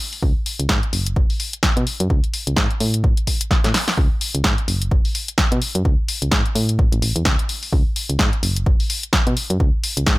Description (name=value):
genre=piano house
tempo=128 BPM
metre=4/4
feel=swing 58% on 16ths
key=unclear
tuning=A4 = 441 Hz
part: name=punchy analog drum machine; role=drums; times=0.1-10.2 s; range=hi-hat, snare drum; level=-21 LUFS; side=left 1 dB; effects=none
part: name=solid FM bass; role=bass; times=0.2-10.2 s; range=F#1 to B2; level=-21 LUFS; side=equal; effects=sidechain pumping
part: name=electronic kick drum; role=drums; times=0.2-10.2 s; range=none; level=-19 LUFS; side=equal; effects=none
room=little or no reverb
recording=none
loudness=-17 LUFS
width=side -20 dB against mid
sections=0.0-10.2 A section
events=drum fill 3.5-4.0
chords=none